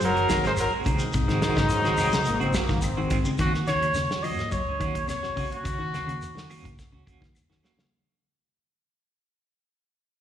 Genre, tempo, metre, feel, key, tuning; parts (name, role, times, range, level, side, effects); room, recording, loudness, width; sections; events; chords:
afrobeat; 106 BPM; 4/4; straight; Eb dorian; A4 = 440 Hz
warm trumpet; melody; 0.0-6.6 s; Eb4 to Eb5; -27 LUFS; left 1 dB; slapback echo
clear tenor saxophone; second line; 0.0-3.1 s; Ab2 to Ab3; -31 LUFS; right 4 dB; slapback echo
clean electric guitar; arpeggios; 0.0-7.9 s; C3 to Gb3; -32 LUFS; left 3 dB
hollow-body short-scale fingered electric bass; bass; 0.0-7.3 s; Gb1 to Eb3; -31 LUFS; equal
warm soul drum kit; drums; 0.0-7.9 s; hi-hat, kick drum, snare drum; -30 LUFS; equal
shekere; percussion; 0.0-7.8 s; -36 LUFS; equal; slapback echo
semi-hollow electric guitar; stabs; 0.1-7.8 s; Eb3 to Gb4; -33 LUFS; right 6 dB; tremolo, slapback echo
claves; percussion; 0.3-7.5 s; -43 LUFS; left 4 dB
clear trombone section; second line; 1.4-3.4 s; Eb3 to C4; -32 LUFS; left 3 dB; slapback echo
moderate club reverb, RT60 0.6 s; live gig heard through the venue's PA, recital hall reverb; -23 LUFS; side -10 dB against mid
0.0-3.4 A section; 3.4-7.9 B section
fade-out 3.4-7.9; drum fill 7.6
0.0 Ab7; 3.4 Ebm7